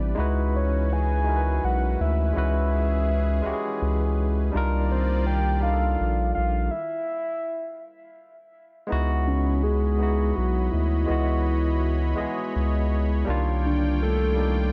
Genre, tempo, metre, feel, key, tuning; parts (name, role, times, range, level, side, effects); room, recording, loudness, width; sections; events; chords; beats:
R&B; 55 BPM (dotted quarters); 6/8; straight; C# dorian; A4 = 441 Hz
barky tine electric piano; accompaniment; 0.0-14.7 s; Eb3 to D#5; -31 LUFS; equal; overdrive
warm analog pad; sustained chords; 0.0-14.7 s; C3 to B5; -39 LUFS; equal; chorus
round analog bass; bass; 0.0-14.7 s; A1 to D2; -26 LUFS; equal
soft octave-layered synth lead; melody; 0.6-14.7 s; C#4 to G#5; -31 LUFS; equal; chorus
little or no reverb; -24 LUFS; mono
0.0-8.9 A section; 8.9-14.7 A section
stop 6.7-8.9
0.2 C#m11; 4.5 Cm11; 6.7 N.C.; 8.9 C#m11; 13.3 Cm11
| 0.17 1.26 | 2.35 3.45 | 4.54 5.63 | 6.72 7.81 | 8.90 9.99 | 11.08 12.17 | 13.26 14.36